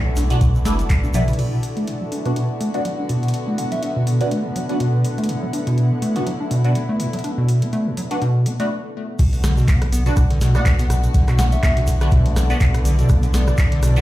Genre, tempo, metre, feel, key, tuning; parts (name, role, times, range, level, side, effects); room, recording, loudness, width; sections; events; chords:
acid house; 123 BPM; 4/4; swing 56% on 16ths; B dorian; A4 = 438 Hz
dark chamber string section; sustained chords; 0.0-14.0 s; D3 to F#4; -29 LUFS; left 2 dB; sidechain pumping, low-pass filter
granular cloud pad; texture; 0.0-14.0 s; B3 to G#5; -31 LUFS; right 1 dB; built-in reverb, sidechain pumping
acid bass, square; riff; 0.1-14.0 s; A2 to D4; -21 LUFS; equal; tube saturation, ping-pong delay
warm sub bass; bass; 0.2-1.3, 9.4-14.0 s; F#1 to B1; -18 LUFS; equal; sidechain pumping
booming analog drum machine; drums; 0.2-14.0 s; crash cymbal, handclaps, hi-hat, rim click, snare drum, toms; -29 LUFS; equal
egg shaker; percussion; 0.2-1.4, 9.2-14.0 s; -38 LUFS; right 2 dB
band-passed chord stab; stabs; 0.3-14.0 s; B3 to F#4; -27 LUFS; right 1 dB; phaser, ensemble chorus, ping-pong delay
electronic kick drum; drums; 0.4-1.0, 9.2-13.7 s; -18 LUFS; equal
soft synth bell; melody; 3.6-3.9, 11.4-11.7 s; E5 to F#5; -30 LUFS; equal; chorus, dub echo
light reverb; played on a big sound system in a bare room, large studio reverb; -16 LUFS; side -15 dB against mid
0.0-1.4 A section; 1.4-9.2 B section; 9.2-14.0 C section
filter sweep on acid bass 0.0-1.4, 1.4-9.2; band accent 0.9; drum fill 1.1; filter sweep on synth stab 1.4-9.2; break 8.7-9.2; drop 9.2-14.0
0.0 Bm